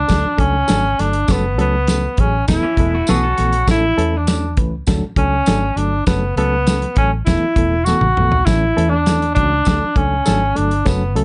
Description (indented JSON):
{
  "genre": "uptempo 1960s-style soul",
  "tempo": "100 BPM",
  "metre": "4/4",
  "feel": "straight",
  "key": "unclear",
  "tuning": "A4 = 440 Hz",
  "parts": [
    { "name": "breathy tenor saxophone", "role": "melody", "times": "0.0-11.2 s", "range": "B3 to F#4", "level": "-20 LUFS", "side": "equal", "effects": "none" },
    { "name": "vintage muted fingered electric bass", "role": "bass", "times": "0.0-11.2 s", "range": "E1 to E2", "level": "-22 LUFS", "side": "equal", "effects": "none" },
    { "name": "barky reed electric piano", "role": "accompaniment", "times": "0.1-11.2 s", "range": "E3 to B4", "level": "-25 LUFS", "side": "equal", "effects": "overdrive, fast tremolo" },
    { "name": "natural country drum kit", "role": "drums", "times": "0.1-11.2 s", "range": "hi-hat, kick drum, snare drum, toms", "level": "-21 LUFS", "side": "equal", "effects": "none" },
    { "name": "tambourine", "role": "percussion", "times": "0.1-11.0 s", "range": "none", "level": "-33 LUFS", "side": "equal", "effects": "none" },
    { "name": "semi-hollow electric guitar", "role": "riff", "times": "2.6-3.7 s", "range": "E3 to A4", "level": "-31 LUFS", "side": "equal", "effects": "none" }
  ],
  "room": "light reverb",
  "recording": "nothing above 10.3 kHz",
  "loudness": "-16 LUFS",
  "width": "mono",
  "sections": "0.0-11.2 A section",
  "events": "drum fill 7.9-8.5",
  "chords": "0.1 D; 1.3 F#m; 2.5 Esus4; 3.7 A; 4.9 D; 6.1 F#m; 7.3 Esus4; 8.5 A; 9.7 D"
}